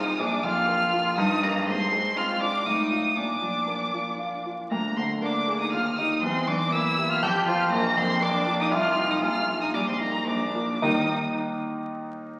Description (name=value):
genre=quick classical-period movement for piano trio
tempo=119 BPM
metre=3/4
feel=rubato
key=Eb major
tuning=A4 = 440 Hz
part: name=rich violin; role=melody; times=0.0-11.1 s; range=Bb5 to G6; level=-29 LUFS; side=equal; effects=none
part: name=clear cello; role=second line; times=0.0-11.1 s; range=Bb3 to G4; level=-32 LUFS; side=equal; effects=none
part: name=warm grand piano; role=accompaniment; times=0.0-12.4 s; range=Bb1 to F5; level=-30 LUFS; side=equal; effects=none
room=wet scoring stage reverb, RT60 1.7 s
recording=very old 78 rpm record, vinyl crackle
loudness=-25 LUFS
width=mono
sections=0.0-10.8 A section; 10.8-12.4 B section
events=slowing down 7.0-10.8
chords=0.2 Bb5; 1.2 Eb/G; 1.7 Fm/Ab; 2.7 F7/A; 3.2 Bb; 4.7 Bb7/D; 5.7 Eb; 6.2 Em7b5; 7.2 F5; 7.7 Bb5; 8.7 Cm; 9.2 Eb/Bb; 10.3 Bb; 10.8 Eb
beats=| 0.20 0.69 1.18 | 1.67 2.17 2.67 | 3.17 3.68 4.20 | 4.71 5.23 5.73 | 6.23 6.73 7.23 | 7.73 8.22 8.73 | 9.23 9.75 10.28 | 10.83 11.36 11.90